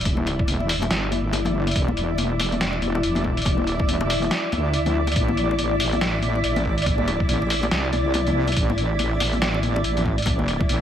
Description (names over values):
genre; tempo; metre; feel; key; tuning
deep dubstep; 141 BPM; 4/4; swing 59% on 16ths, half-time; E minor; A4 = 440 Hz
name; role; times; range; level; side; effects
granular cloud pad; sustained chords; 0.0-10.8 s; E4; -28 LUFS; left 3 dB; built-in reverb
wobble bass; bass; 0.0-10.8 s; E1 to D2; -24 LUFS; equal; chorus
trip hop sampler-style drum kit; drums; 0.0-10.8 s; hi-hat, snare drum; -26 LUFS; equal; none
flickering grainy texture; texture; 0.0-10.8 s; D5; -28 LUFS; right 2 dB; built-in reverb
electronic kick drum; drums; 0.1-10.7 s; none; -24 LUFS; equal; none
congas; percussion; 0.1-10.8 s; none; -29 LUFS; left 3 dB; dub echo
room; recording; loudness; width
moderate spring reverb, RT60 1.8 s; vinyl crackle; -20 LUFS; side -10 dB against mid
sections
0.0-10.8 A section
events
none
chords
0.0 Em; 5.2 Am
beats
| 0.06 0.48 0.91 1.33 | 1.76 2.18 2.61 3.03 | 3.46 3.88 4.31 4.74 | 5.16 5.59 6.01 6.44 | 6.86 7.29 7.71 8.14 | 8.57 8.99 9.42 9.84 | 10.27 10.69